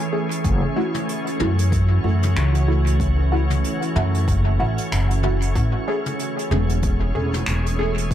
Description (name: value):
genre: ambient dub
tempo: 94 BPM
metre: 4/4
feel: swing 58% on 16ths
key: F# minor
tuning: A4 = 438 Hz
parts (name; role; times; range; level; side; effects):
- soft additive organ-like pad; sustained chords; 0.0-8.1 s; E3 to C#5; -26 LUFS; right 1 dB; ensemble chorus, built-in reverb
- wind-like tuned noise texture; texture; 0.0-0.5 s; none; barely audible; none; none
- filtered dub chord stab; stabs; 0.1-7.9 s; A3 to G#4; -27 LUFS; right 1 dB; phaser, lush chorus, dub echo
- jazz brush drum kit; drums; 0.3-8.1 s; finger snaps, hi-hat, toms; -30 LUFS; left 2 dB; dub echo
- upright bass; bass; 0.4-8.1 s; E1 to F#2; -19 LUFS; equal; none
- electronic kick drum; drums; 0.4-8.1 s; none; -24 LUFS; equal; none
room: studio reverb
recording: none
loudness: -18 LUFS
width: side -11 dB against mid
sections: 0.4-8.1 A section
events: break 0.0-0.4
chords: 0.4 F#m7; 5.6 Amaj7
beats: | 0.45 1.09 1.73 2.36 | 3.00 3.64 4.28 4.92 | 5.56 6.19 6.83 7.47 | 8.11